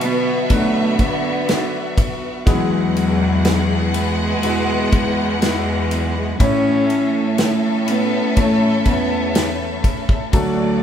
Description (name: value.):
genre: pop ballad.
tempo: 61 BPM.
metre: 4/4.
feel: straight.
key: A major.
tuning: A4 = 443 Hz.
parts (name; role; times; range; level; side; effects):
warm cello; melody; 0.0-10.8 s; F#3 to C#4; -21 LUFS; equal; none.
warm studio violin section; second line; 0.0-10.8 s; A3 to F#5; -24 LUFS; left 1 dB; none.
warm concert grand piano; accompaniment; 0.0-10.8 s; A2 to C#5; -24 LUFS; left 1 dB; none.
clean electric guitar; arpeggios; 0.0-10.8 s; E2 to F#4; -28 LUFS; left 4 dB; spring reverb.
warm symphonic cello section; bass; 0.0-10.8 s; D2 to D3; -23 LUFS; right 1 dB; none.
natural country drum kit; drums; 0.0-10.6 s; kick drum, ride cymbal, snare drum; -20 LUFS; equal; none.
room: moderate large studio reverb, RT60 1.2 s.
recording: band playing live in one room.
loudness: -15 LUFS.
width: side -9 dB against mid.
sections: 0.0-10.8 A section.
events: none.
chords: 0.0 Bm; 2.5 Eadd9; 6.4 A.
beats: 0.50 1.48 | 2.47 3.45 4.43 5.42 | 6.40 7.38 8.37 9.35 | 10.34.